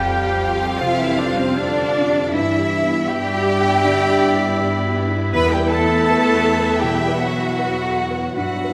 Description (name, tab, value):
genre	cinematic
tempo	79 BPM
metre	4/4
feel	rubato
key	unclear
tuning	A4 = 440 Hz
part	rich studio violin section	melody	0.0-8.7 s	D5 to F5	-33 LUFS	equal	none
part	clear oboe	second line	0.0-8.7 s	G5 to B5	-31 LUFS	equal	none
part	dark clarinet	second line	0.0-8.7 s	E5 to F5	-30 LUFS	equal	none
part	mellow hollow concert flute	second line	0.0-8.7 s	C5 to B5	-28 LUFS	equal	none
part	rich studio violin section	second line	0.0-8.7 s	C5 to B5	-30 LUFS	equal	none
part	dark studio viola section	accompaniment	0.0-8.7 s	B3 to F4	-29 LUFS	equal	none
part	felt-muted upright piano	accompaniment	0.0-8.7 s	E2 to B4	-28 LUFS	equal	none
part	warm French horn section	sustained chords	0.0-8.7 s	C3 to B3	-30 LUFS	equal	none
part	rich studio double bass section	bass	0.0-8.7 s	E2 to G2	-27 LUFS	equal	none
part	warm studio cello section	bass	0.0-8.7 s	C4 to B4	-24 LUFS	equal	none
room	moderate concert hall reverb, RT60 2.2 s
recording	none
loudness	-18 LUFS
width	mono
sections	0.0-8.7 A section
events	none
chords	0.0 Fsus2; 2.3 G6; 5.3 Esus2